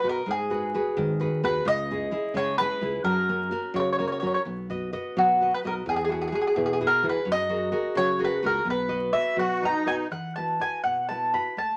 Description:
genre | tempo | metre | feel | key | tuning
italian folk, Italian serenade | 86 BPM (dotted quarters) | 6/8 | rubato | B major | A4 = 439 Hz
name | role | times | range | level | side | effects
mandolin | melody | 0.0-11.8 s | F#4 to B5 | -28 LUFS | equal | none
nylon-string guitar | accompaniment | 0.0-11.8 s | B2 to D#5 | -33 LUFS | equal | none
sustaining fretless electric bass | bass | 0.0-10.0 s | B1 to F#3 | -34 LUFS | equal | none
musette accordion | second line | 9.4-10.1 s | D#4 to F#4 | -30 LUFS | equal | none
room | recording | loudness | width
wet studio reverb, RT60 0.6 s | vinyl crackle | -26 LUFS | mono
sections
0.0-10.1 A section; 10.1-11.8 B section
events
none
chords
0.3 G#m7; 1.7 C#m; 3.1 F#; 4.5 B; 5.9 Eadd9; 7.3 F#add9; 8.7 B; 10.1 Esus2

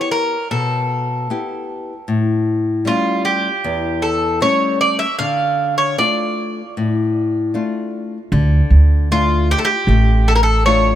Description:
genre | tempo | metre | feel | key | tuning
greek folk, Greek bouzouki band | 77 BPM | 4/4 | straight | D harmonic minor | A4 = 440 Hz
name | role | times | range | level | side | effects
Greek bouzouki | melody | 0.0-11.0 s | F4 to F5 | -18 LUFS | right 1 dB | none
nylon-string guitar | accompaniment | 0.0-11.0 s | E2 to G4 | -20 LUFS | left 3 dB | none
upright bass | bass | 8.3-11.0 s | A1 to D2 | -13 LUFS | right 1 dB | none
room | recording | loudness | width
light reverb | none | -14 LUFS | side -11 dB against mid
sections
0.0-8.3 A section; 8.3-11.0 A section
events
none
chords
0.0 Em; 2.1 A7; 5.2 Dm

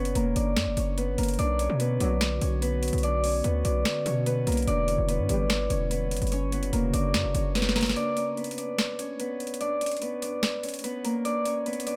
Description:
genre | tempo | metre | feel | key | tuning
hip hop, trap | 146 BPM | 4/4 | half-time | B harmonic minor | A4 = 442 Hz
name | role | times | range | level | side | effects
Celtic harp | melody | 0.0-12.0 s | A#3 to D5 | -30 LUFS | equal | none
hard-hitting 808-style bass | bass | 0.0-8.0 s | E1 to B2 | -30 LUFS | equal | none
trap drum kit | drums | 0.1-12.0 s | finger snaps, hi-hat, snare drum | -33 LUFS | equal | overdrive
warbly tape-like pad | sustained chords | 1.4-7.9 s | C#3 to F#4 | -39 LUFS | equal | chorus, built-in reverb
dark brass ensemble | stabs | 2.0-2.3, 5.3-5.6 s | D2 to G3 | -35 LUFS | equal | none
room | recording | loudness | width
light reverb | none | -27 LUFS | mono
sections
0.0-8.0 A section; 8.0-12.0 B section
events
drum fill 7.6-8.0; break 8.0-12.0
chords
0.0 F#; 1.4 Bm; 4.7 Em7; 6.3 F#; 8.0 Bm; 11.2 Bmadd9

